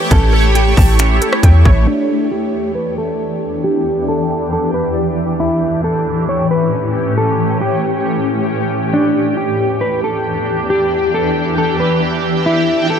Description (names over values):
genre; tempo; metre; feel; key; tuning
hip hop, atmospheric cloud-rap; 136 BPM; 4/4; half-time; E dorian; A4 = 440 Hz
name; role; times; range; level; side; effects
mellow electric guitar; melody; 0.0-13.0 s; D4 to C#5; -18 LUFS; equal; low-pass filter, tape echo
shimmering ambient pad; sustained chords; 0.0-13.0 s; E2 to C#5; -16 LUFS; equal; chorus, built-in reverb, phaser, sidechain pumping, low-pass filter
hollow square pluck; arpeggios; 0.0-1.9 s; C#4 to A5; -27 LUFS; right 3 dB; chorus, tape echo
soft 808-style bass; bass; 0.1-1.9 s; A1 to E2; -11 LUFS; equal; none
trap drum kit; drums; 0.1-1.8 s; finger snaps, hi-hat, kick drum, rim click; -12 LUFS; equal; none
room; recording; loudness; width
light reverb, digital ambience; none; -13 LUFS; side -8 dB against mid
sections
0.0-1.9 A section; 1.9-13.0 B section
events
filter sweep 1.9-13.0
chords
0.0 A7; 1.9 Em7; 5.4 A7; 8.9 Em7; 12.5 A7